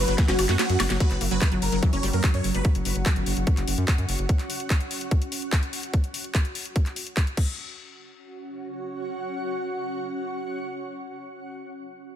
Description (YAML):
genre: psychedelic trance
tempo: 146 BPM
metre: 4/4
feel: straight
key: unclear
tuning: A4 = 441 Hz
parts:
  - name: dense compressed supersaw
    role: melody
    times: 0.0-2.6 s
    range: F#4 to C#5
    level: -29 LUFS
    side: right 1 dB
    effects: phaser, sidechain pumping, tape echo
  - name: pulsing gated texture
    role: sustained chords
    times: 0.0-4.3 s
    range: F#3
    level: -33 LUFS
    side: left 1 dB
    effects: chorus, built-in reverb, sidechain pumping
  - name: round analog bass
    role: bass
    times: 0.0-4.3 s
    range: F#1 to F#2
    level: -26 LUFS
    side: equal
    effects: none
  - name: granular cloud pad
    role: texture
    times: 0.0-11.6 s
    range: C#4 to F#6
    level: -34 LUFS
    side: right 1 dB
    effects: built-in reverb, sidechain pumping
  - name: wide unison pluck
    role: riff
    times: 0.1-2.6 s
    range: E3 to F#4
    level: -31 LUFS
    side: moving between left 5 dB and right 6 dB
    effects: auto-pan, sidechain pumping, tape echo
  - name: drum and bass drum kit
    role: drums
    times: 0.1-7.5 s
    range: crash cymbal, handclaps, hi-hat, ride cymbal, snare drum, woodblock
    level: -29 LUFS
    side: left 1 dB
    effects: overdrive, studio reverb
  - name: electronic kick drum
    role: drums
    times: 0.2-7.5 s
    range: none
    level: -22 LUFS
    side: equal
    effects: overdrive, studio reverb
room: light reverb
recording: none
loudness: -23 LUFS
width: side -10 dB against mid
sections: 0.0-1.0 A section; 1.0-7.6 B section; 7.6-10.9 C section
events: drop 0.0-1.0; drum fill 0.2-1.0; kick drops out 0.6-1.0; filter sweep on synth texture 1.0-4.3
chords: 0.0 F#5